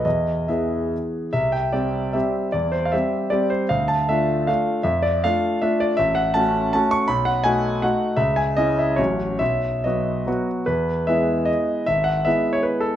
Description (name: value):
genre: classical, romantic triple-time dance for piano with dotted rhythms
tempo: 131-175 BPM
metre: 3/4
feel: rubato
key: C major, E major from 6.0 s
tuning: A4 = 440 Hz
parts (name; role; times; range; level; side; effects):
- clear concert grand piano; solo; 0.0-13.0 s; G#1 to C#6; -19 LUFS; equal; none
room: moderate recital hall reverb, RT60 1.4 s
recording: minimal, uncompressed stereo recording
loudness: -19 LUFS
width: side -11 dB against mid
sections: 0.0-1.3 A section; 1.3-10.7 B section; 10.7-13.0 A section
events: none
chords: 0.0 E; 1.3 C; 2.5 C/E; 3.7 Dm; 4.8 Dm/F; 6.0 A6; 7.1 B7; 8.2 C#m; 9.0 F#m/A; 9.4 B; 10.7 E; 11.9 E/G#